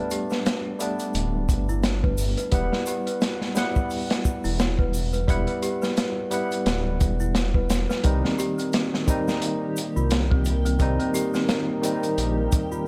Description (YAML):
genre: trip hop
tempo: 87 BPM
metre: 4/4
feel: swing 57% on 16ths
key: unclear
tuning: A4 = 440 Hz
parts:
  - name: barky tine electric piano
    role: accompaniment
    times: 0.0-12.9 s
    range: Eb3 to F#5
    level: -30 LUFS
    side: equal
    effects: harmonic tremolo, low-pass filter, tape echo
  - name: worn celesta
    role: arpeggios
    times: 0.0-12.9 s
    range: C4 to B4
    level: -34 LUFS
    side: equal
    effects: tape echo
  - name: crunchy breakbeat drum kit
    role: drums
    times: 0.1-12.7 s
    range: hi-hat, kick drum, snare drum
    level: -28 LUFS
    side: equal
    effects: vintage 12-bit sampler grit
  - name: tube shaker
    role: percussion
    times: 0.1-12.8 s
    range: none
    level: -43 LUFS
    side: equal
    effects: none
  - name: dark detuned saw bass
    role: bass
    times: 1.1-12.5 s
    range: D1 to C2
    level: -28 LUFS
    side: equal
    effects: none
  - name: dark analog pad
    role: sustained chords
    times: 8.0-12.9 s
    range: Bb3 to Bb4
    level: -34 LUFS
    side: equal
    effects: chorus, vintage 12-bit sampler grit
  - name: backwards swelling texture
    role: texture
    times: 9.6-12.9 s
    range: G4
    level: -43 LUFS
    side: equal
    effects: built-in reverb
room: small room ambience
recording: none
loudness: -24 LUFS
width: mono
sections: 0.0-8.0 A section; 8.0-12.9 B section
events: filter sweep on tine electric piano 0.0-8.0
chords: 0.0 Gadd9; 2.5 Emadd9; 8.0 Cm